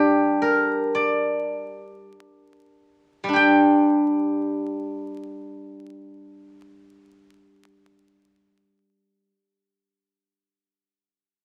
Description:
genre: chinese traditional, Chinese solo plucked strings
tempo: free time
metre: none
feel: none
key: G yu mode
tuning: A4 = 443 Hz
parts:
  - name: steel-string zither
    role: solo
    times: 0.0-9.3 s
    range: G3 to G5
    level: -22 LUFS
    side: equal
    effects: none
room: moderate studio reverb, RT60 0.8 s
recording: vinyl crackle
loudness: -21 LUFS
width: mono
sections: 0.0-3.4 A section; 3.4-8.2 B section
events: slowing down 0.0-3.4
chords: none

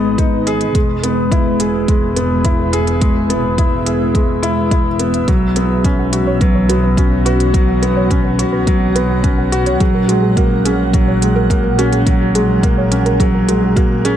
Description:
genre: piano and strings electronica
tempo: 106 BPM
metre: 4/4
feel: straight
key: unclear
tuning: A4 = 445 Hz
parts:
  - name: granular cloud pad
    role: sustained chords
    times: 0.0-14.2 s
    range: G#3 to F#5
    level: -22 LUFS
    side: right 1 dB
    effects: built-in reverb, sidechain pumping
  - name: felt-muted upright piano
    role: riff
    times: 0.0-14.2 s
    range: F#3 to G#4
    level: -16 LUFS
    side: equal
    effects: digital delay
  - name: warm studio double bass section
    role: bass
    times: 0.0-14.2 s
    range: E1 to B1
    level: -19 LUFS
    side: equal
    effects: sidechain pumping
  - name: electronic hi-hat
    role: drums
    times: 0.2-14.2 s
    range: none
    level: -24 LUFS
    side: right 1 dB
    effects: none
  - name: electronic kick drum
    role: drums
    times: 0.2-13.9 s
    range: none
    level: -15 LUFS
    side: equal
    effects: none
  - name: soft round pluck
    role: arpeggios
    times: 5.3-14.1 s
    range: F#4 to F#5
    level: -23 LUFS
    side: right 3 dB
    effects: chorus, sidechain pumping, digital delay
room: moderate recital hall reverb, RT60 1.3 s, small room ambience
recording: none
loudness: -12 LUFS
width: side -10 dB against mid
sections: 0.0-14.2 A section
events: none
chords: 0.0 G#m; 0.8 E; 5.3 Bsus2; 9.8 F#add9/A#

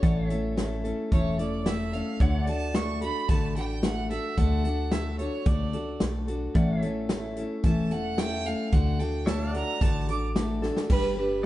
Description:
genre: honky-tonk and classic country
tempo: 110 BPM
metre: 4/4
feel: straight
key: D major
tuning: A4 = 441 Hz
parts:
  - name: clear fiddle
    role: second line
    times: 0.0-11.5 s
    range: B4 to D6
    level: -34 LUFS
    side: right 4 dB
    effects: none
  - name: picked steel-string acoustic guitar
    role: accompaniment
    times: 0.0-11.5 s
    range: A2 to B4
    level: -28 LUFS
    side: left 2 dB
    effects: none
  - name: pedal steel guitar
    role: sustained chords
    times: 0.0-11.5 s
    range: C#5 to F#5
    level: -39 LUFS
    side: right 2 dB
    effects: none
  - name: upright bass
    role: bass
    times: 0.0-11.5 s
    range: E1 to D2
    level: -32 LUFS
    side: equal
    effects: none
  - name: natural country drum kit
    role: drums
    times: 0.0-11.0 s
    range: crash cymbal, hi-hat, kick drum, snare drum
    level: -27 LUFS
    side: equal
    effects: none
room: light reverb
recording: heard from further back in the room, nothing above 10.9 kHz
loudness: -24 LUFS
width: side -15 dB against mid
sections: 0.0-10.9 A section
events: fiddle solo 0.0-10.9; drum fill 10.6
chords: 0.0 A; 2.2 D; 6.6 A; 8.7 D; 10.9 G

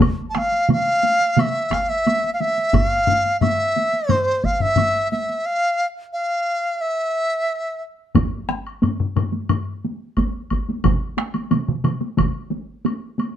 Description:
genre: japanese traditional, taiko drum ensemble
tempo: 89 BPM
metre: 4/4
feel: straight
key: unclear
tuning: A4 = 439 Hz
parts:
  - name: taiko ensemble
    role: percussion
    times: 0.0-13.3 s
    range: none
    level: -24 LUFS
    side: right 1 dB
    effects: none
  - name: taiko ensemble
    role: percussion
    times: 0.0-1.9, 10.8-12.3 s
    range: none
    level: -21 LUFS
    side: right 3 dB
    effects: none
  - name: taiko ensemble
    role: percussion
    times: 0.0-12.3 s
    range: none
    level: -21 LUFS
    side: equal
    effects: none
  - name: woodblock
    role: percussion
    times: 0.0-13.3 s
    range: none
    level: -33 LUFS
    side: left 3 dB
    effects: none
  - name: reedy dizi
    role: melody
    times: 0.3-7.8 s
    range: C5 to A5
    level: -19 LUFS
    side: equal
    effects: plate reverb
  - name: solo taiko drums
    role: percussion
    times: 2.7-9.7 s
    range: none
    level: -22 LUFS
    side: left 4 dB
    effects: none
room: moderate studio reverb, RT60 0.8 s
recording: dark, warm production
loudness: -18 LUFS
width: side -10 dB against mid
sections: 0.0-8.2 A section; 8.2-13.4 B section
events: break 5.5-8.2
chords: none

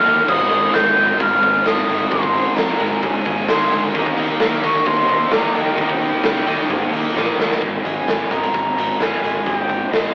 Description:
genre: rock, shoegaze and dream pop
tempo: 131 BPM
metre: 4/4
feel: straight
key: Ab major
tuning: A4 = 440 Hz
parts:
  - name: breathy silver concert flute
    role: melody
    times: 0.0-10.1 s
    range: Eb5 to G6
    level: -22 LUFS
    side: equal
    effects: none
  - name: distorted electric guitar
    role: riff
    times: 0.0-7.6 s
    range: Ab2 to Eb4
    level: -26 LUFS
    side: equal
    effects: distortion
  - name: overdriven electric guitar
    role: riff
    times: 0.0-10.1 s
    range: Eb3 to Db5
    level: -32 LUFS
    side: equal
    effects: none
  - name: thick fuzz guitar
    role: riff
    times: 0.0-10.1 s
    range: Ab2 to Eb4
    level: -30 LUFS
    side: equal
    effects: distortion
  - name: fuzz picked electric bass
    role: bass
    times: 0.1-10.1 s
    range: Ab1 to Db3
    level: -30 LUFS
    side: equal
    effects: overdrive
  - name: raw garage drum kit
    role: drums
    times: 0.1-10.0 s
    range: crash cymbal, hi-hat, kick drum, snare drum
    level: -22 LUFS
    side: equal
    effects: none
room: moderate studio reverb, RT60 0.5 s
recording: rough rehearsal-room recording, warm saturation, AM radio sound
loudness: -18 LUFS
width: mono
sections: 0.0-7.6 A section; 7.6-10.1 B section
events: drum fill 7.2-7.6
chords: 0.3 Ab; 3.9 Eb7; 7.6 Ab

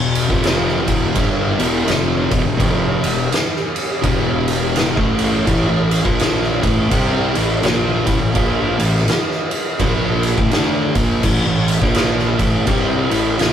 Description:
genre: stoner and doom metal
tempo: 83 BPM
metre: 4/4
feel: swing 61% on 8ths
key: unclear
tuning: A4 = 440 Hz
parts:
  - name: thick fuzz guitar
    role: riff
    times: 0.0-13.5 s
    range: E2 to D4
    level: -18 LUFS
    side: equal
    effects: distortion
  - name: fuzz fingered electric bass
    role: bass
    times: 0.0-13.5 s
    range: E1 to D2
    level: -24 LUFS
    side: equal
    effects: overdrive
  - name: oversized low-tuned drum kit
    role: drums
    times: 0.2-13.5 s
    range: crash cymbal, kick drum, ride cymbal, snare drum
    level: -18 LUFS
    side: equal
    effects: none
room: moderate booth ambience, RT60 0.2 s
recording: rough rehearsal-room recording, warm saturation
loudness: -14 LUFS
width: side -9 dB against mid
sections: 0.0-13.5 A section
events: none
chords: 0.0 Em; 5.5 A5

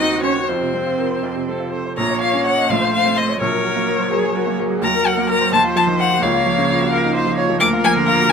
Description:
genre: quick classical-period movement for piano quartet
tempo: 85 BPM (dotted quarters)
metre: 6/8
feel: rubato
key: Bb minor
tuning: A4 = 441 Hz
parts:
  - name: rich violin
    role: melody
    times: 0.0-8.3 s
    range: C5 to D6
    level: -19 LUFS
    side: left 4 dB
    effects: none
  - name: rich cello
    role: second line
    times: 0.0-8.3 s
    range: F3 to Eb4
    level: -24 LUFS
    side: right 6 dB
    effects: none
  - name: bright baby grand piano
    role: accompaniment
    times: 0.0-8.3 s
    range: Bb1 to Eb5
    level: -20 LUFS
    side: equal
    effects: none
  - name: clear viola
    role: accompaniment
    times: 0.0-8.3 s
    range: F4 to Db5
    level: -23 LUFS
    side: equal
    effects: none
room: moderate studio reverb, RT60 0.8 s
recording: minimal, uncompressed stereo recording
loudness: -15 LUFS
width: side -6 dB against mid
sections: 0.0-2.0 A section; 2.0-8.3 B section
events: none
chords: 0.5 Fsus4; 1.2 F; 2.0 Bbm; 2.7 F/Bb; 3.4 Gb/Bb; 4.8 Ebm; 5.5 F5/Eb; 6.2 Bbm/Db; 7.6 Bb/D

